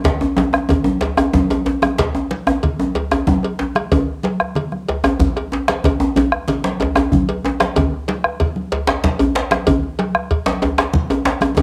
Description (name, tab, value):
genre	west african traditional, West African drum ensemble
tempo	125 BPM (dotted quarters)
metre	12/8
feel	straight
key	none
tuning	none
part	congas	percussion	0.0-11.6 s	none	-26 LUFS	equal	none
part	cowbell	percussion	0.0-11.6 s	none	-26 LUFS	equal	none
part	djembe	percussion	0.0-11.6 s	none	-20 LUFS	equal	none
part	bombo	percussion	0.1-11.6 s	none	-22 LUFS	equal	none
part	djembe	percussion	0.1-11.6 s	none	-29 LUFS	equal	none
room	light reverb, studio reverb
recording	home recording on cassette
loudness	-18 LUFS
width	mono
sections	0.0-11.6 A section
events	none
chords	none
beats	| 0.05 0.53 1.02 1.50 | 1.99 2.47 2.95 3.43 | 3.92 4.40 4.88 5.36 | 5.84 6.32 6.80 7.28 | 7.76 8.24 8.72 9.19 | 9.67 10.15 10.62 11.10 | 11.58